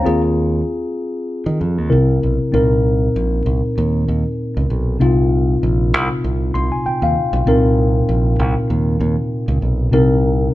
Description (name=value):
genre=lush 1970s-style soul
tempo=97 BPM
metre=4/4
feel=swing 54% on 16ths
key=unclear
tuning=A4 = 440 Hz
part: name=mellow tine electric piano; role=accompaniment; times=0.0-10.5 s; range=Bb2 to C6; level=-17 LUFS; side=left 1 dB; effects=none
part: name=fingered electric bass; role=bass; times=0.0-10.5 s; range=Bb1 to Eb3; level=-18 LUFS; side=right 1 dB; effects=none
room=moderate large studio reverb, RT60 1.1 s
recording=band playing live in one room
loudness=-14 LUFS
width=side -16 dB against mid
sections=0.0-2.5 A section; 2.5-10.5 B section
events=tine electric piano fill 6.2-7.5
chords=0.1 Ab6/Eb; 1.9 C7; 2.5 Cm7